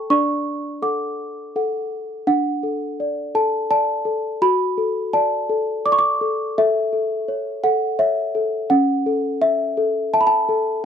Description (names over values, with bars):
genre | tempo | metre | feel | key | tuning
classical, lullaby for celesta | 84 BPM | 3/4 | straight | D major | A4 = 440 Hz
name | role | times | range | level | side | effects
small celesta | solo | 0.0-10.8 s | C#4 to D6 | -18 LUFS | left 1 dB | none
room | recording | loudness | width
small room ambience | dry, close 1970s-style studio recording | -18 LUFS | side -8 dB against mid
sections
0.0-2.3 A section; 2.3-10.8 B section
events
none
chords
0.1 D; 4.4 D/F#; 6.6 A; 8.7 A/C#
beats
| 0.11 0.84 1.56 | 2.28 3.00 3.71 | 4.42 5.13 5.85 | 6.56 7.27 7.99 | 8.70 9.41 10.12 | 10.83